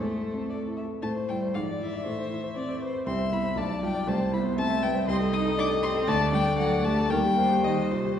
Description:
quick classical-period movement for piano quartet; 118 BPM; 2/4; rubato; A minor; A4 = 439 Hz
rich violin; melody; 0.0-8.2 s; A4 to Eb6; -31 LUFS; left 5 dB
rich cello; second line; 0.0-8.2 s; C3 to Eb4; -31 LUFS; right 3 dB
rich violin; second line; 0.0-8.2 s; Bb4 to E5; -32 LUFS; left 3 dB
clear grand piano; accompaniment; 0.0-8.2 s; B1 to D5; -28 LUFS; equal
wet recital hall reverb, RT60 1.6 s; heard from further back in the room, nothing above 10.4 kHz; -24 LUFS; side -9 dB against mid
0.0-1.0 A section; 1.0-8.2 B section
0.0 Am; 1.5 E7/G#; 2.1 Am; 3.1 C; 3.6 G7/B; 4.1 C; 5.1 Am7b5/C; 6.1 D5; 7.1 Eb
0.49 | 1.02 1.54 | 2.05 2.56 | 3.07 3.57 | 4.08 4.58 | 5.08 5.58 | 6.08 6.59 | 7.10 7.64 | 8.19

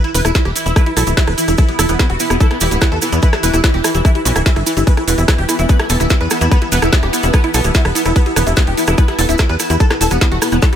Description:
psychedelic trance; 146 BPM; 4/4; straight; E minor; A4 = 437 Hz
dense compressed supersaw; melody; 0.0-10.8 s; B3 to B4; -20 LUFS; equal; phaser, sidechain pumping, dub echo
pulsing gated texture; sustained chords; 0.0-10.8 s; E3 to E4; -23 LUFS; left 1 dB; chorus, built-in reverb, sidechain pumping
woody wave-folded pluck; riff; 0.0-10.8 s; E4 to F#5; -24 LUFS; moving between left 5 dB and right 5 dB; chorus, auto-pan, sidechain pumping, dub echo
drum and bass drum kit; drums; 0.0-10.8 s; hi-hat, rim click, snare drum; -20 LUFS; equal
ethereal airy pad; texture; 0.1-10.8 s; E4 to B5; -25 LUFS; equal; ensemble chorus, built-in reverb, sidechain pumping
tight sequencer bass; bass; 0.1-10.6 s; D1 to E2; -16 LUFS; equal
cabasa; percussion; 0.1-10.7 s; -23 LUFS; right 6 dB
electronic kick drum; drums; 0.3-10.7 s; -12 LUFS; equal
vowel-sweep wobble bass; second line; 4.9-7.2 s; barely audible
digital ambience; -11 LUFS; side -9 dB against mid
0.0-10.8 A section
0.0 E5
0.35 0.76 1.17 | 1.58 1.99 2.40 2.82 | 3.23 3.64 4.05 4.46 | 4.87 5.28 5.69 6.10 | 6.51 6.92 7.34 7.75 | 8.16 8.57 8.98 9.39 | 9.80 10.21 10.62

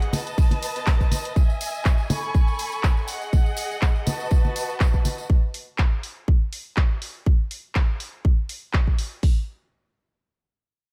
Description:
piano house; 122 BPM; 4/4; swing 55% on 16ths; A4 = 440 Hz
dark chamber violin section; sustained chords; 0.0-5.3 s; F#4 to C#6; -32 LUFS; equal; sidechain pumping
house drum kit; drums; 0.0-9.1 s; handclaps, hi-hat; -34 LUFS; equal
tambourine and congas; percussion; 0.0-5.3 s; -33 LUFS; equal
open jazz drum kit; drums; 0.1-1.4 s; hi-hat, snare drum; -46 LUFS; equal
house drum kit; drums; 0.4-9.4 s; hi-hat, kick drum; -22 LUFS; equal
small room ambience; -23 LUFS; mono
0.0-9.2 A section; 9.2-10.9 B section
0.1 B7; 1.4 Emaj7; 2.1 Amaj9; 3.1 D#madd11/G#; 4.1 B7/F#; 5.3 N.C.
0.38 0.87 | 1.36 1.85 2.35 2.84 | 3.33 3.82 4.31 4.80 | 5.30 5.79 6.28 6.77 | 7.26 7.75 8.25 8.74 | 9.23

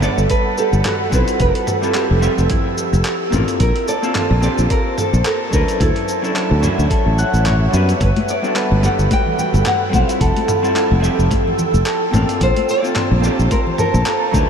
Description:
sunset chillout; 109 BPM; 4/4; swing 56% on 16ths; A4 = 440 Hz
nylon-string guitar; melody; 0.0-14.5 s; G4 to G5; -23 LUFS; equal; ping-pong delay
vintage hollow-body jazz guitar; accompaniment; 0.0-14.5 s; F3 to F#5; -22 LUFS; moving between left 6 dB and right 4 dB; auto-pan, ping-pong delay
ethereal airy pad; sustained chords; 0.0-14.5 s; A4 to E6; -22 LUFS; right 2 dB; ensemble chorus, built-in reverb
Celtic harp; arpeggios; 0.0-14.5 s; E4 to F#5; -25 LUFS; equal; ping-pong delay
fingered electric bass; bass; 0.0-14.4 s; F1 to F#2; -16 LUFS; equal
dusty soul sampler-style drum kit; drums; 0.0-14.5 s; handclaps, hi-hat, shaker, toms; -24 LUFS; equal; overdrive
electronic kick drum; drums; 0.3-14.5 s; -19 LUFS; equal; overdrive
congas; percussion; 8.2-14.5 s; -26 LUFS; left 2 dB
moderate huge ambient reverb, RT60 9.2 s; dreamy mix soaked in reverb; -14 LUFS; side -7 dB against mid
0.0-14.5 A section
0.0 Gmaj9; 1.4 Fmaj9; 3.6 Bbmaj9; 5.8 Dmaj9; 8.0 Gmaj9; 10.2 Fmaj9; 12.4 Bbmaj9
0.30 0.85 | 1.40 1.95 2.50 3.06 | 3.60 4.16 4.71 5.26 | 5.81 6.36 6.91 7.46 | 8.01 8.56 9.11 9.66 | 10.21 10.76 11.31 11.86 | 12.41 12.96 13.51 14.06

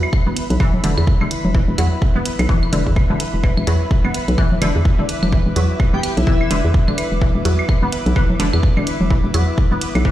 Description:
minimal techno; 127 BPM; 4/4; swing 59% on 16ths; A4 = 440 Hz
claves and congas; percussion; 0.0-10.0 s; -24 LUFS; equal; dub echo
airy breathy pad; texture; 0.0-10.1 s; B3 to D6; -28 LUFS; left 1 dB; chorus, sidechain pumping
pulsing gated texture; texture; 0.0-10.1 s; B4; -30 LUFS; right 2 dB; chorus, built-in reverb, sidechain pumping
electronic kick drum; drums; 0.1-10.1 s; -16 LUFS; equal
resonant blip pluck; riff; 0.3-10.1 s; D3 to B3; -24 LUFS; equal; phaser, ensemble chorus, sidechain pumping, digital delay
hollow knocking FM bass; bass; 0.3-10.1 s; E1 to E2; -18 LUFS; equal; sidechain pumping
electronic hi-hat; drums; 0.4-10.0 s; -28 LUFS; right 2 dB
airy dreamy lead; melody; 5.9-6.6 s; E4 to G4; -25 LUFS; left 3 dB; chorus, vintage 12-bit sampler grit, dub echo
light reverb; played on a big sound system in a bare room, stone room reverb; -15 LUFS; side -13 dB against mid
0.0-10.1 A section
0.0 E5
0.13 0.60 1.07 | 1.55 2.02 2.49 2.96 | 3.44 3.91 4.38 4.85 | 5.33 5.80 6.27 6.74 | 7.22 7.69 8.16 8.63 | 9.11 9.58 10.05

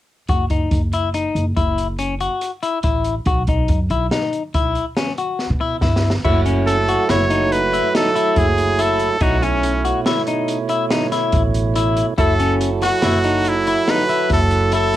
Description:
progressive instrumental, band music in an uneven meter; 142 BPM; 7/4; straight; F# dorian; A4 = 440 Hz
semi-hollow electric guitar; arpeggios; 0.3-15.0 s; C#4 to F#4; -21 LUFS; left 5 dB
upright bass; bass; 0.3-15.0 s; F#1 to B2; -21 LUFS; equal
open jazz drum kit; drums; 0.3-15.0 s; crash cymbal, hi-hat, kick drum, snare drum; -22 LUFS; equal; cassette tape
percussive tonewheel organ; accompaniment; 6.2-15.0 s; B2 to C#5; -22 LUFS; right 6 dB; overdrive, stopped rotary speaker
brilliant trumpet; melody; 6.7-15.0 s; C#4 to C#5; -19 LUFS; right 1 dB; cassette tape
light reverb; home recording on cassette; -16 LUFS; side -13 dB against mid
0.3-6.2 A section; 6.2-15.0 B section
drum fill 5.4-6.2
0.3 F#7(no3); 3.3 Bsus4; 6.2 F#m7; 9.2 B9sus4; 12.2 F#m7
| 0.29 0.72 1.15 1.57 2.00 2.42 2.85 | 3.27 3.70 4.12 4.55 4.97 5.40 5.82 | 6.25 6.67 7.09 7.52 7.94 8.37 8.79 | 9.21 9.64 10.06 10.48 10.91 11.33 11.76 | 12.18 12.60 13.03 13.45 13.88 14.30 14.72

